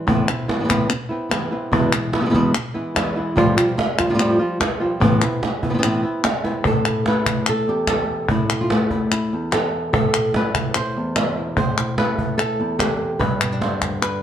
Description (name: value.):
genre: flamenco.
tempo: 146 BPM.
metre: 4/4.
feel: straight.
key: A minor.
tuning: A4 = 440 Hz.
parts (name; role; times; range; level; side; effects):
flamenco guitar; melody; 0.0-14.2 s; E2 to C5; -20 LUFS; equal; none.
cajon; percussion; 0.1-14.2 s; none; -23 LUFS; right 2 dB; none.
palmas hand claps; percussion; 0.1-14.2 s; none; -24 LUFS; left 4 dB; none.
room: moderate stone room reverb, RT60 0.9 s.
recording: dark, warm production.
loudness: -18 LUFS.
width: side -9 dB against mid.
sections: 0.1-6.7 A section; 6.7-14.2 B section.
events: drum fill 6.5.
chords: 0.1 Amadd9; 1.7 E; 3.4 Fadd9; 5.0 Amadd9; 6.7 Am; 13.2 G.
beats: | 0.08 0.49 0.91 1.32 | 1.73 2.14 2.55 2.96 | 3.37 3.78 4.19 4.60 | 5.01 5.42 5.83 6.24 | 6.66 7.07 7.47 7.88 | 8.29 8.70 9.11 9.52 | 9.93 10.34 10.75 11.16 | 11.57 11.98 12.39 12.80 | 13.21 13.61 14.02.